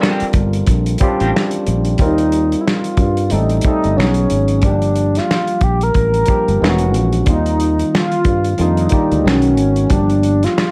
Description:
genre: R&B, neo-soul.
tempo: 91 BPM.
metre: 4/4.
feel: swing 59% on 16ths.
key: unclear.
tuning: A4 = 440 Hz.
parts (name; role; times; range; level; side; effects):
electric guitar at the edge of break-up; second line; 0.0-1.3 s; G3 to G4; -25 LUFS; equal; tremolo.
barky tine electric piano; accompaniment; 0.0-10.7 s; Eb3 to D5; -22 LUFS; equal; overdrive.
warm soul drum kit; drums; 0.0-10.7 s; finger snaps, hi-hat, kick drum, snare drum; -20 LUFS; equal; none.
sustaining fretless electric bass; bass; 0.2-10.5 s; E1 to G2; -19 LUFS; equal; subtle chorus.
mellow horn-like synth lead; melody; 2.0-10.7 s; C#4 to Bb4; -20 LUFS; equal; chorus.
room: moderate studio reverb, RT60 0.8 s.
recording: dark, warm production, vinyl crackle.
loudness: -15 LUFS.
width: mono.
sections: 0.0-2.0 A section; 2.0-10.7 B section.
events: none.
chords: 0.0 Bb69; 2.0 Eb69; 3.3 Am7b5; 4.0 B69; 4.6 Gm7; 6.6 E69; 7.3 Eb69; 8.6 F13sus4; 9.2 B69; 9.9 Gm7.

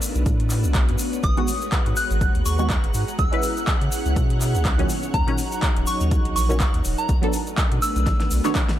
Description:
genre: deep house.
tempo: 123 BPM.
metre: 4/4.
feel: swing 57% on 16ths.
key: G# minor.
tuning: A4 = 440 Hz.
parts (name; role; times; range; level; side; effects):
soft string machine; sustained chords; 0.0-8.8 s; F#3 to C#5; -32 LUFS; equal; ensemble chorus, sidechain pumping.
deep house drum kit; drums; 0.0-8.8 s; handclaps, hi-hat, snare drum; -30 LUFS; equal; overdrive.
egg shaker; percussion; 0.0-8.7 s; none; -33 LUFS; left 2 dB; none.
ethereal airy pad; texture; 0.0-8.8 s; B3 to A#5; -33 LUFS; equal; ensemble chorus, built-in reverb, sidechain pumping.
warm sub bass; bass; 0.2-8.4 s; D#1 to C#3; -23 LUFS; equal; sidechain pumping.
electronic kick drum; drums; 0.3-8.7 s; none; -23 LUFS; equal; overdrive.
soft synth bell; melody; 1.2-8.3 s; A#5 to F#6; -28 LUFS; equal; chorus, phaser, vintage 12-bit sampler grit, dub echo.
analog string pad; texture; 1.6-8.8 s; F#5 to F#6; -38 LUFS; equal; ensemble chorus, phaser.
filtered dub chord stab; stabs; 1.4-8.6 s; A#2 to C#5; -27 LUFS; right 2 dB; phaser, cassette tape, sidechain pumping, tape echo.
room: digital ambience.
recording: none.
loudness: -19 LUFS.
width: side -12 dB against mid.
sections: 0.0-8.8 A section.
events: drum fill 8.1-8.8.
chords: 0.0 Bm7; 1.2 G#m7; 3.2 C#m7; 4.9 D#m7; 7.1 Bm7.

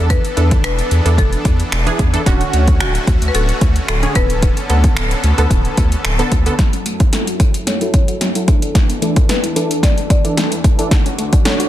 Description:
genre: dance-pop.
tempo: 111 BPM.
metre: 4/4.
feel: straight.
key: unclear.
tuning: A4 = 440 Hz.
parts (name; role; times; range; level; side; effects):
buzzing marimba with medium hard mallets; melody; 0.0-11.7 s; F#4 to D5; -25 LUFS; left 4 dB; low-pass filter, tape echo.
funky polysynth comp; accompaniment; 0.0-11.7 s; D3 to C#5; -21 LUFS; right 2 dB; chorus, sidechain pumping, low-pass filter.
supersaw chords; sustained chords; 0.0-11.7 s; D2 to A4; -25 LUFS; equal; sidechain pumping, low-pass filter.
saturated sub bass; bass; 0.0-6.5 s; D1 to E2; -16 LUFS; equal; sidechain pumping.
deep house drum kit; drums; 0.1-11.7 s; finger snaps, hi-hat, kick drum, snare drum; -15 LUFS; equal; overdrive, soft clipping on snare.
hollow square pluck; arpeggios; 6.6-11.7 s; D3 to F#4; -26 LUFS; left 3 dB; chorus, sidechain pumping, low-pass filter, tape echo.
room: little or no reverb.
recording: dense, heavily limited modern master.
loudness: -12 LUFS.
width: side -13 dB against mid.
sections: 0.0-6.6 A section; 6.6-11.7 B section.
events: build-up 6.6-11.7; drum fill 6.6-11.7; filter sweep 6.6-11.7.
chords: 0.0 E7sus4; 2.3 Dmaj7; 4.2 Bm7/D; 6.6 F#m7; 8.5 E7sus4; 10.9 Dmaj7.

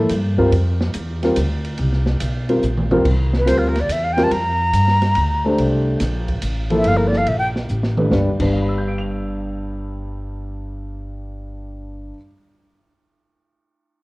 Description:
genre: modal jazz.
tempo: 142 BPM.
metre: 3/4.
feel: swing 67% on 8ths.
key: unclear.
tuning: A4 = 439 Hz.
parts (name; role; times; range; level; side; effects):
dark concert grand piano; accompaniment; 0.0-12.3 s; G2 to F7; -21 LUFS; left 1 dB; none.
upright bass; bass; 0.0-12.1 s; G1 to G2; -21 LUFS; equal; none.
open jazz drum kit; drums; 0.1-8.5 s; crash cymbal, hi-hat, kick drum, ride cymbal, snare drum, toms; -26 LUFS; right 1 dB; none.
jazz flute; melody; 3.4-7.5 s; F4 to Bb5; -19 LUFS; equal; none.
room: moderate large studio reverb, RT60 1.4 s.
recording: worn, warbling old tape, cassette tape, warbly pitch drift.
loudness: -16 LUFS.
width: side -22 dB against mid.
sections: 0.0-3.1 A section; 3.1-8.1 B section; 8.1-10.6 C section.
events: drum fill 2.6-3.1, 7.7-8.1; flute solo 3.1-8.1.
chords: 0.0 C9sus4; 8.1 G.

